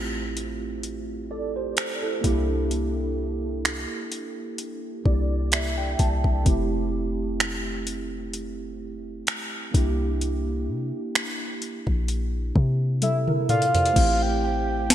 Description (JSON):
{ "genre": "contemporary R&B", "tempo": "64 BPM", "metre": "4/4", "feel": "swing 54% on 16ths", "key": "unclear", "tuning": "A4 = 440 Hz", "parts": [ { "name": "mellow tine electric piano", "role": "accompaniment", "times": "0.0-14.9 s", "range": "A3 to A5", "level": "-29 LUFS", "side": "right 3 dB", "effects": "ensemble chorus" }, { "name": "warm 808-style bass", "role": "bass", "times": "0.0-14.9 s", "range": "F1 to C3", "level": "-27 LUFS", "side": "left 1 dB", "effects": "none" }, { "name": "smooth R&B drum kit", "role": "drums", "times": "0.4-14.9 s", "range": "crash cymbal, finger snaps, hi-hat, kick drum, snare drum, toms", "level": "-24 LUFS", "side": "equal", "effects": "gated reverb" }, { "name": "soft octave-layered synth lead", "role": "melody", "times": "13.0-14.9 s", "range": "E5 to A5", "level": "-23 LUFS", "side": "equal", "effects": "chorus" } ], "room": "light reverb", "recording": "bright 1980s-style digital production", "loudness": "-23 LUFS", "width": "side -11 dB against mid", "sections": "0.0-14.0 A section", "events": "tine electric piano fill 4.6-6.5; drum fill 13.0-14.0", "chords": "0.0 Am7; 2.2 C7; 6.5 Fmaj7; 9.7 C7; 14.0 Am7" }